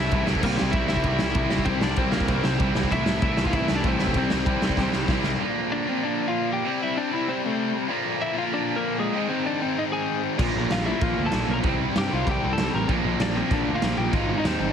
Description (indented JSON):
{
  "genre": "punk rock",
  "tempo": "193 BPM",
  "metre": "4/4",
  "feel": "straight",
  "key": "C mixolydian",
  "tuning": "A4 = 440 Hz",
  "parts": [
    { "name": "lightly driven lead guitar", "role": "melody", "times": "0.0-14.7 s", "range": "Ab3 to Bb5", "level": "-28 LUFS", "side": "left 3 dB", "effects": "none" },
    { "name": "overdriven electric guitar", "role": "riff", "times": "0.0-14.7 s", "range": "Ab2 to F4", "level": "-29 LUFS", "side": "left 13 dB", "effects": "none" },
    { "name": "raw garage guitar", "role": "riff", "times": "0.0-14.7 s", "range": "Ab2 to C4", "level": "-29 LUFS", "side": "right 15 dB", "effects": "overdrive" },
    { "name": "fuzz picked electric bass", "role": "bass", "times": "0.0-5.4, 10.4-14.7 s", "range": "Ab1 to G2", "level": "-28 LUFS", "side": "right 1 dB", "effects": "overdrive" },
    { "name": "raw garage drum kit", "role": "drums", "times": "0.1-5.3, 10.4-14.5 s", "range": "crash cymbal, kick drum, ride cymbal, snare drum", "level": "-26 LUFS", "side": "right 1 dB", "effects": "none" },
    { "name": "fuzz guitar", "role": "riff", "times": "0.4-5.4, 10.4-14.7 s", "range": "Ab2 to C4", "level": "-30 LUFS", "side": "right 1 dB", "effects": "distortion" }
  ],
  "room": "light reverb",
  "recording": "heavily compressed radio sound",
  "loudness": "-22 LUFS",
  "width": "side -8 dB against mid",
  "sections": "0.0-5.4 A section; 5.4-14.7 B section",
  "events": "drum fill 4.8-5.4; half time 5.4-14.7",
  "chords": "0.4 C; 2.9 Am/C; 4.2 C; 5.4 Bb; 6.7 C; 7.9 Bb; 9.1 Ab; 10.4 Bb; 11.6 C; 12.9 Bb; 14.1 Ab"
}